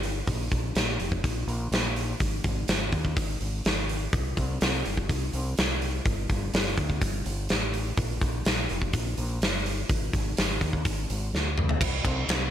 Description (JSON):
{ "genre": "quiet-loud alternative rock", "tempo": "125 BPM", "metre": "4/4", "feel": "straight", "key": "unclear", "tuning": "A4 = 440 Hz", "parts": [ { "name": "growling fingered electric bass", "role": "bass", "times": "0.0-12.5 s", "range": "F1 to Eb2", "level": "-30 LUFS", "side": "equal", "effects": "overdrive" }, { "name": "big rock drum kit", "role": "drums", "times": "0.0-12.4 s", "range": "crash cymbal, hi-hat, kick drum, ride cymbal, snare drum, toms", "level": "-27 LUFS", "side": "equal", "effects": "none" } ], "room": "little or no reverb", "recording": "none", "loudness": "-25 LUFS", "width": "side -10 dB against mid", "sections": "0.0-11.8 A section", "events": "drum fill 11.3-11.8", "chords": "none" }